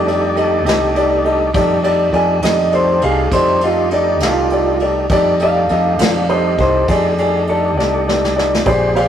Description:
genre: slow blues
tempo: 68 BPM (dotted quarters)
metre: 12/8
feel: straight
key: F mixolydian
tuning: A4 = 441 Hz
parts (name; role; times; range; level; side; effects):
- tonewheel organ; sustained chords; 0.0-9.1 s; G3 to G4; -22 LUFS; left 1 dB; slow rotary speaker
- fingered electric bass; bass; 0.0-9.1 s; Bb1 to F2; -21 LUFS; equal; none
- clear upright piano; accompaniment; 0.1-9.1 s; Eb4 to F5; -16 LUFS; equal; none
- vintage brush drum kit; drums; 0.1-9.1 s; kick drum, ride cymbal, snare drum; -22 LUFS; equal; none
- electric guitar through a small old amp; second line; 2.2-9.1 s; Eb4 to Ab5; -18 LUFS; right 1 dB; none
room: light reverb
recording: rough rehearsal-room recording, tube saturation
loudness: -12 LUFS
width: side -9 dB against mid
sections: 0.0-9.1 A section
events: clean electric guitar solo 0.0-9.1; drum fill 7.8-8.7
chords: 0.0 F13

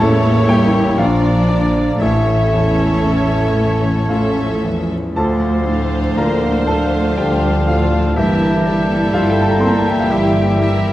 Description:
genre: classical, romantic movement for piano and orchestra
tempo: 56-62 BPM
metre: 3/4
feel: rubato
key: D minor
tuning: A4 = 440 Hz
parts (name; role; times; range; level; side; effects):
- clear grand piano; melody; 0.0-10.9 s; A1 to C6; -18 LUFS; left 1 dB; none
- warm symphonic violin section; melody; 0.0-10.9 s; G4 to D5; -28 LUFS; left 2 dB; none
- clear oboe; second line; 0.0-10.9 s; C#5 to G5; -29 LUFS; equal; none
- clear studio violin section; second line; 0.0-10.9 s; F4 to F5; -27 LUFS; left 2 dB; none
- silver concert flute; second line; 0.0-10.9 s; F5 to C#6; -28 LUFS; equal; none
- warm clarinet; second line; 0.0-10.9 s; D4 to A4; -26 LUFS; right 1 dB; none
- mellow bassoon; accompaniment; 0.0-10.9 s; C#3 to A3; -25 LUFS; right 1 dB; none
- warm symphonic viola section; accompaniment; 0.0-10.9 s; A3 to E4; -22 LUFS; right 1 dB; none
- mellow French horn section; sustained chords; 0.0-10.9 s; E3 to E4; -25 LUFS; left 2 dB; none
- clear symphonic double bass section; bass; 0.0-10.9 s; G1 to D2; -20 LUFS; right 1 dB; none
- warm symphonic cello section; bass; 0.0-10.9 s; D3 to C4; -22 LUFS; right 1 dB; none
room: wet recital hall reverb, RT60 1.5 s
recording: dark, warm production, vinyl crackle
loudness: -13 LUFS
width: side -14 dB against mid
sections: 0.0-10.9 A section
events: none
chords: 0.0 A7b9; 1.0 Bb; 2.0 A; 5.2 Dm; 8.2 Edim/G

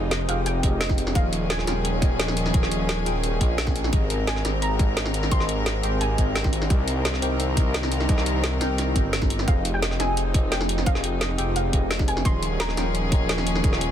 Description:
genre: liquid drum and bass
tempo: 173 BPM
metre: 4/4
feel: straight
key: F minor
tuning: A4 = 440 Hz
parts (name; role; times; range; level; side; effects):
- soft round pluck; melody; 0.0-1.8, 4.3-6.8, 9.5-13.3 s; Eb5 to C6; -33 LUFS; equal; ensemble chorus, cassette tape, ping-pong delay
- tine electric piano; accompaniment; 0.0-13.9 s; C4 to Ab5; -29 LUFS; equal; phaser, dub echo
- rich chamber string section; sustained chords; 0.0-13.9 s; Eb3 to Bb4; -31 LUFS; left 2 dB; none
- swelling detuned saw bass; bass; 0.0-13.9 s; Eb1 to C2; -26 LUFS; equal; none
- drum and bass drum kit; drums; 0.1-13.9 s; hi-hat, snare drum; -28 LUFS; equal; none
- electronic kick drum; drums; 0.6-13.7 s; none; -22 LUFS; equal; none
room: little or no reverb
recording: dense, heavily limited modern master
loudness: -21 LUFS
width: side -10 dB against mid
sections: 0.0-13.9 A section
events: none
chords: 0.0 Fm9; 1.2 Eb9sus4; 3.9 Abmaj9; 6.7 Cm7; 9.5 Fm9; 12.3 Eb9sus4

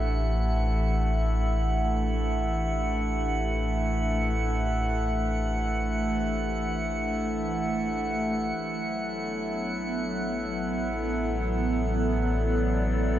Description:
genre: ambient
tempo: free time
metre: none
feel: none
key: A dorian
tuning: A4 = 440 Hz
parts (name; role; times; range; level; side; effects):
- warbly tape-like pad; sustained chords; 0.0-13.2 s; E3 to D5; -31 LUFS; right 1 dB; chorus, built-in reverb, phaser, shimmer reverb
- round analog bass; bass; 0.0-13.2 s; A1; -29 LUFS; equal; none
- hand-pumped harmonium; drone; 0.0-13.2 s; A3 to E4; -33 LUFS; left 2 dB; none
- drifting glass-harmonics texture; texture; 0.0-13.2 s; F#5; -33 LUFS; right 3 dB; chorus, built-in reverb, shimmer reverb
room: wet huge ambient reverb, RT60 8.1 s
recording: in a vast, echoing space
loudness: -25 LUFS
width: side -12 dB against mid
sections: 0.0-13.2 A section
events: fade-in on ambient pad 0.0-13.2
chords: 0.0 Am7; 8.6 Dadd9/A

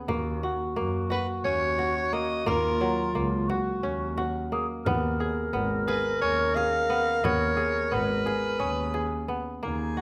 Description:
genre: contemporary instrumental, chamber music in an uneven meter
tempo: 176 BPM (eighths)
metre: 7/8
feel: straight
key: unclear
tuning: A4 = 441 Hz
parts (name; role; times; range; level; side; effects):
- kora; arpeggios; 0.0-10.0 s; Gb3 to Ab4; -33 LUFS; equal; none
- mellow clarinet; second line; 0.1-10.0 s; Eb4 to Bb4; -32 LUFS; equal; none
- clear double bass; bass; 0.1-10.0 s; Ab1 to Gb2; -34 LUFS; equal; none
- frame drum; percussion; 0.1-9.5 s; none; -38 LUFS; equal; none
- growling soprano saxophone; melody; 1.1-10.0 s; Ab4 to F5; -31 LUFS; equal; none
room: light reverb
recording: close, detailed microphones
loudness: -27 LUFS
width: mono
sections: 0.0-9.6 A section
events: none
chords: 0.1 Ebm7; 2.5 Gbmaj7; 4.9 Db7(no3)

